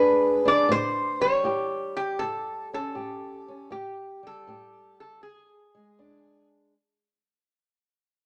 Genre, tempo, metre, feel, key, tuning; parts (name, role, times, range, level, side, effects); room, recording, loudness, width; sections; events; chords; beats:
acoustic country blues, solo or duo; 79 BPM; 4/4; swing 68% on 8ths; A mixolydian; A4 = 440 Hz
lap resonator guitar; melody; 0.0-6.5 s; G4 to D5; -26 LUFS; equal
fingerpicked old ladder-braced acoustic guitar; accompaniment; 0.0-6.7 s; E2 to G#4; -33 LUFS; equal
moderate large studio reverb, RT60 1.2 s; -25 LUFS; mono
0.0-6.8 A section
fade-out 0.0-6.8
0.0 E7; 0.7 A7; 5.2 E7
| 0.67 1.44 2.20 2.96 | 3.72 4.48 5.24 6.00